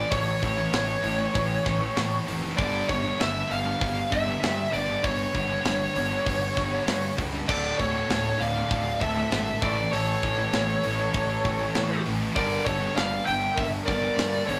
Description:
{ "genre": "heavy metal", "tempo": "98 BPM", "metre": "4/4", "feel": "straight", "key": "unclear", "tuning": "A4 = 438 Hz", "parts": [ { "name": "smooth overdriven lead guitar", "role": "melody", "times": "0.0-14.6 s", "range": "C#5 to G5", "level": "-30 LUFS", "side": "equal", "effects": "none" }, { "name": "heavy high-gain guitar", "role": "riff", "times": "0.0-14.6 s", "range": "D2 to A3", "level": "-38 LUFS", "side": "equal", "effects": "none" }, { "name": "high-gain distorted guitar", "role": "riff", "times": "0.0-14.6 s", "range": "D2 to A3", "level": "-38 LUFS", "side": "equal", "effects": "none" }, { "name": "scooped high-gain guitar", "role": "riff", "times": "0.0-14.6 s", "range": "D2 to A3", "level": "-37 LUFS", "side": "equal", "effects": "none" }, { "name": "fuzz picked electric bass", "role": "bass", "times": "0.0-14.6 s", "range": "D1 to A2", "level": "-34 LUFS", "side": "equal", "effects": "overdrive" }, { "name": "tight metal drum kit", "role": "drums", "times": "0.1-14.6 s", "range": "crash cymbal, hi-hat, kick drum, snare drum", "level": "-33 LUFS", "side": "equal", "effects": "none" }, { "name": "bluesy overdriven lead guitar", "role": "second line", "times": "7.5-14.6 s", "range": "A4 to E5", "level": "-37 LUFS", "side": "equal", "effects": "distortion" } ], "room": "light reverb", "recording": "rough rehearsal-room recording", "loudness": "-26 LUFS", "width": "mono", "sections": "0.0-14.6 A section", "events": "none", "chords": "0.0 A; 2.6 G5; 7.5 Dm; 9.6 A; 12.4 Gm" }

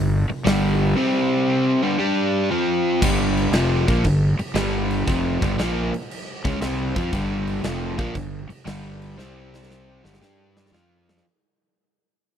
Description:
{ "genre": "blues rock power trio and southern rock", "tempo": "117 BPM", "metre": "4/4", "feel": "swing 68% on 8ths", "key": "unclear", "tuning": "A4 = 439 Hz", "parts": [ { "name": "overdriven electric guitar", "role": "riff", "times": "0.0-11.2 s", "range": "F2 to G4", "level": "-20 LUFS", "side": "equal", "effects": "none" }, { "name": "fuzz fingered electric bass", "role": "bass", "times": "0.0-11.2 s", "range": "F1 to G2", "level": "-27 LUFS", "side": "equal", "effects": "overdrive" }, { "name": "huge arena drum kit", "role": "drums", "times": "0.5-11.2 s", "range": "crash cymbal, hi-hat, kick drum, snare drum", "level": "-27 LUFS", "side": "equal", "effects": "none" } ], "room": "little or no reverb", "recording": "none", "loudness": "-19 LUFS", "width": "side -9 dB against mid", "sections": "0.0-3.0 A section; 3.0-11.2 A section", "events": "fade-out 3.0-11.2; drum fill 9.2-11.2", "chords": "0.0 G5; 1.0 C5; 1.7 G5; 2.5 F5; 3.0 G5; 9.2 C5; 10.0 G5; 10.7 F5" }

